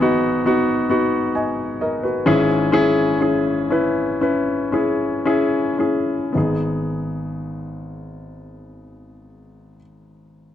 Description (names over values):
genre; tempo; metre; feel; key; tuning
pop; 53-69 BPM; 4/4; straight; G# minor; A4 = 444 Hz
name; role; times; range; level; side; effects
clear baby grand piano; accompaniment; 0.0-10.5 s; G#1 to G#5; -18 LUFS; left 1 dB; none
room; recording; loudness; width
light reverb, studio reverb; dry, close 1970s-style studio recording; -17 LUFS; side -11 dB against mid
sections
0.0-6.4 A section; 6.4-10.5 B section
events
slowing down 0.0-6.4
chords
0.0 G#m; 2.3 E6/G#; 6.4 G#m